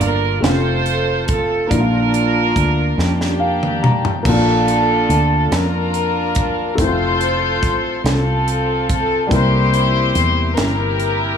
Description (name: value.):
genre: slow gospel.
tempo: 47 BPM (dotted quarters).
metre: 6/8.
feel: straight.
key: Bb major.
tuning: A4 = 440 Hz.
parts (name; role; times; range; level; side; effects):
rich chamber string section; melody; 0.0-11.4 s; Bb3 to C5; -18 LUFS; equal; tape echo.
warm baby grand piano; accompaniment; 0.0-11.4 s; Bb2 to Bb5; -21 LUFS; left 2 dB; none.
fingered electric bass; bass; 0.0-11.4 s; F1 to F2; -20 LUFS; equal; none.
crisp fusion drum kit; drums; 0.0-11.2 s; crash cymbal, hi-hat, kick drum, snare drum, toms; -21 LUFS; right 1 dB; none.
room: light reverb.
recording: small room ambience.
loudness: -14 LUFS.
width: side -7 dB against mid.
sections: 0.0-4.2 A section; 4.2-11.4 A section.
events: drum fill 3.0-4.2; grand piano fill 3.0-4.2.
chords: 0.4 F; 1.7 Bb; 6.8 F; 9.3 C7.